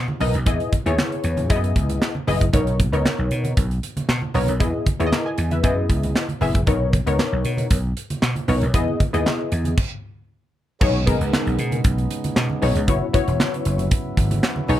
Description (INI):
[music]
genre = early-eighties boogie funk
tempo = 116 BPM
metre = 4/4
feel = straight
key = B major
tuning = A4 = 440 Hz
[part]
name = vintage slap bass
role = bass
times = 0.0-14.8 s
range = E1 to B2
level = -22 LUFS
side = equal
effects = none
[part]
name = congas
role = percussion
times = 0.1-14.8 s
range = none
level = -30 LUFS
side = right 2 dB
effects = none
[part]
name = funky polysynth comp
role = accompaniment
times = 0.2-14.8 s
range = A#3 to G#5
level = -23 LUFS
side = left 2 dB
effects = chorus
[part]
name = modern studio drum kit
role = drums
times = 0.2-14.8 s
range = crash cymbal, handclaps, hi-hat, kick drum, snare drum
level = -22 LUFS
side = equal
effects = none
[part]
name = pipe organ, flutes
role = sustained chords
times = 10.8-14.8 s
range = C#3 to E4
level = -29 LUFS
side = right 2 dB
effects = none
[sound]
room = little or no reverb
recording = none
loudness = -18 LUFS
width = side -12 dB against mid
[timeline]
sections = 0.0-10.8 A section; 10.8-14.8 B section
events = stop 9.8-10.8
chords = 0.5 Emaj7; 1.5 F#13sus4; 2.5 Bmaj9; 4.6 Emaj7; 5.6 F#13sus4; 6.7 Bmaj9; 8.7 Emaj7; 9.8 N.C.; 10.8 B69; 12.9 F#7sus4